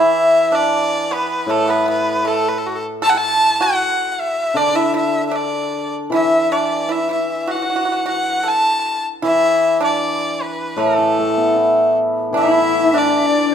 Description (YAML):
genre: chinese traditional, Chinese chamber ensemble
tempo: 77 BPM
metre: 2/4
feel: rubato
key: unclear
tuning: A4 = 440 Hz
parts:
  - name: clear erhu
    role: melody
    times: 0.0-13.5 s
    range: F#4 to A5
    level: -18 LUFS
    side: left 1 dB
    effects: none
  - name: pipa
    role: second line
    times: 0.0-13.5 s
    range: A3 to A4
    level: -21 LUFS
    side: right 5 dB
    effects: none
  - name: hammered dulcimer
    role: accompaniment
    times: 0.0-13.5 s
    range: A2 to E4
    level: -20 LUFS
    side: left 1 dB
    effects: none
  - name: breathy dizi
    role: second line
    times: 12.3-13.5 s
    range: D5 to E5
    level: -22 LUFS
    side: left 7 dB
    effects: none
  - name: dark horsehead fiddle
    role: second line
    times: 12.3-13.5 s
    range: D4 to E4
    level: -18 LUFS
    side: left 6 dB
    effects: none
room: moderate recital hall reverb, RT60 1.6 s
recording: minimal, uncompressed stereo recording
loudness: -15 LUFS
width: side -8 dB against mid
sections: 0.0-12.3 A section; 12.3-13.5 B section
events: none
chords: none